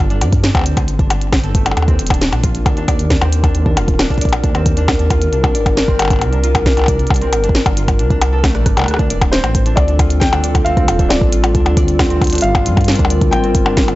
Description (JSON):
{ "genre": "IDM", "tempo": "135 BPM", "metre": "4/4", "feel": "straight", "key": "D phrygian", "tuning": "A4 = 440 Hz", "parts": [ { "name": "warbly tape-like pad", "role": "sustained chords", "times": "0.2-14.0 s", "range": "G3 to Bb4", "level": "-20 LUFS", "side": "left 1 dB", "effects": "chorus, built-in reverb" }, { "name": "concert harp", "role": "arpeggios", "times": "0.0-14.0 s", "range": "D3 to D5", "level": "-24 LUFS", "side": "right 1 dB", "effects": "analog delay" }, { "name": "dark detuned saw bass", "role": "bass", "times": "0.0-14.0 s", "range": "D1 to G2", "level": "-17 LUFS", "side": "equal", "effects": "tube saturation" }, { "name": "glitchy drum kit", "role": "drums", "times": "0.1-14.0 s", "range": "hi-hat, percussion blips, rim click, snare drum", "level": "-18 LUFS", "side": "left 1 dB", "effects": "none" }, { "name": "electronic kick drum", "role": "drums", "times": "0.3-13.9 s", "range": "none", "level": "-16 LUFS", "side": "equal", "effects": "none" }, { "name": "felt-muted upright piano", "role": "melody", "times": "9.3-14.0 s", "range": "C5 to G5", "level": "-21 LUFS", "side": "left 1 dB", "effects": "analog delay" } ], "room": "digital ambience", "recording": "dry, gritty hardware recording, nothing above 7.8 kHz", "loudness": "-12 LUFS", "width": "side -17 dB against mid", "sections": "0.0-14.0 A section", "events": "drum fill 8.5-8.9", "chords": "0.0 G5; 1.8 Eb5; 5.3 C5; 8.9 Dm7; 12.4 Gm7" }